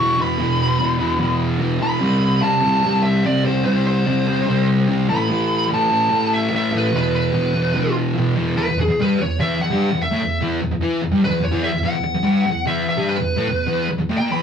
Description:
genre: rock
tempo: 147 BPM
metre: 4/4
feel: straight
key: unclear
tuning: A4 = 444 Hz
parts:
  - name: fuzz lead guitar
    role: melody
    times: 0.0-14.4 s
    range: G#4 to C#6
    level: -21 LUFS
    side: equal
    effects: distortion
  - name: thick fuzz guitar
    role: riff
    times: 0.0-14.4 s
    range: E2 to E4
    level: -18 LUFS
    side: equal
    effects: distortion
room: wet studio reverb, RT60 0.5 s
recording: rough rehearsal-room recording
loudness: -16 LUFS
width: side -7 dB against mid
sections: 0.0-8.6 A section; 8.6-14.4 B section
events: none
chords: 0.0 E5; 2.0 C5; 5.1 A5; 6.9 E5

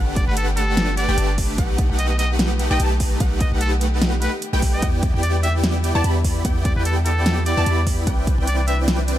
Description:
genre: future bass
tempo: 148 BPM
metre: 4/4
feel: swing 55% on 16ths, half-time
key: unclear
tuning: A4 = 440 Hz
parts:
  - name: rich studio string section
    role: sustained chords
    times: 0.0-9.2 s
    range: C3 to B4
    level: -34 LUFS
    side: left 2 dB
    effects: none
  - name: wide unison pluck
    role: arpeggios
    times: 0.0-9.2 s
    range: F#5 to B5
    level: -32 LUFS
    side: equal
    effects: sidechain pumping
  - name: supersaw chords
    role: riff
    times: 0.0-9.2 s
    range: A3 to B5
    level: -25 LUFS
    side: equal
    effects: sidechain pumping, tape echo
  - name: long sustained 808-style bass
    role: bass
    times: 0.0-9.2 s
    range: G1 to E2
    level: -21 LUFS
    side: equal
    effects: tube saturation, sidechain pumping
  - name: trumpet with straight mute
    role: melody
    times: 0.2-8.8 s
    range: A4 to E5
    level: -27 LUFS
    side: equal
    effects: sidechain pumping, dub echo
  - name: electronic kick drum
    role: drums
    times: 0.2-8.4 s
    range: none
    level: -21 LUFS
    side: equal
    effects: overdrive
  - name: pop drum kit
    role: drums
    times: 0.2-9.2 s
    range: hi-hat, snare drum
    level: -24 LUFS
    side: equal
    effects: overdrive
room: digital ambience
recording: none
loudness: -17 LUFS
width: side -12 dB against mid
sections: 0.0-9.2 A section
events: none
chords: 0.0 Gmaj9; 1.6 B7b13; 4.8 Em7; 8.1 Cmaj9

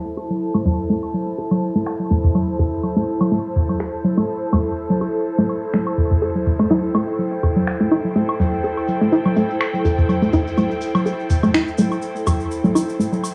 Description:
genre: minimal techno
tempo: 124 BPM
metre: 4/4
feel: swing 54% on 16ths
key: A minor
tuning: A4 = 440 Hz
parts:
  - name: airy breathy pad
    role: texture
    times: 0.0-13.3 s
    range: E4 to A5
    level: -26 LUFS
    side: equal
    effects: chorus
  - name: tube shaker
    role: percussion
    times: 0.1-13.3 s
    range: none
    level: -41 LUFS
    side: equal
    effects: none
  - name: hollow square pluck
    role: riff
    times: 0.2-13.0 s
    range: A3 to A4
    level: -22 LUFS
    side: equal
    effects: chorus, analog delay
  - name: electronic woodblock, congas and toms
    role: percussion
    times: 0.2-13.3 s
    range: none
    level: -23 LUFS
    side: equal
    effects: cassette tape, tape echo
  - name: electronic finger snaps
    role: drums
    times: 1.9-11.6 s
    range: none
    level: -30 LUFS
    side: equal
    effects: low-pass filter on snare, cassette tape, low-pass filter on hats
room: wet studio reverb, RT60 0.6 s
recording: home recording on cassette, low-pass filter, studio reverb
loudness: -20 LUFS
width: mono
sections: 0.0-13.3 A section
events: filter sweep on drum 0.0-13.3; filter sweep 0.0-13.3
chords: 0.0 Am

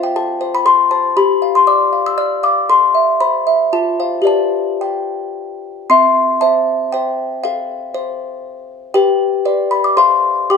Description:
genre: classical, lullaby for music box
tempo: 110-122 BPM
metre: 3/4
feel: rubato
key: C major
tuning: A4 = 439 Hz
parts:
  - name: music box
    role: solo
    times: 0.0-10.6 s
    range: C4 to F6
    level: -13 LUFS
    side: left 2 dB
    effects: none
room: moderate recital hall reverb, RT60 1.6 s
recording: dark, warm production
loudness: -12 LUFS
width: side -6 dB against mid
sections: 0.0-5.9 A section; 5.9-10.6 B section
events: none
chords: 0.0 F; 1.2 G5; 2.7 Am; 3.7 F; 4.3 G; 5.9 C; 7.4 F/A; 8.9 G; 10.0 F/A

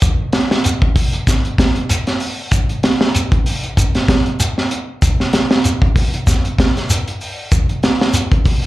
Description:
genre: afrobeat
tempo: 96 BPM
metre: 4/4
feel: swing 56% on 16ths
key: none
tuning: none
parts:
  - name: crunchy breakbeat drum kit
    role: drums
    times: 0.0-8.7 s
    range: hi-hat, kick drum, snare drum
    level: -14 LUFS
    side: equal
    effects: slapback echo
  - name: shekere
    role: percussion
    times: 0.0-8.6 s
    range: none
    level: -19 LUFS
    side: equal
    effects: slapback echo
room: light reverb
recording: live gig heard through the venue's PA, club reverb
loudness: -13 LUFS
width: side -17 dB against mid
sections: 0.0-8.7 A section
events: none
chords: none

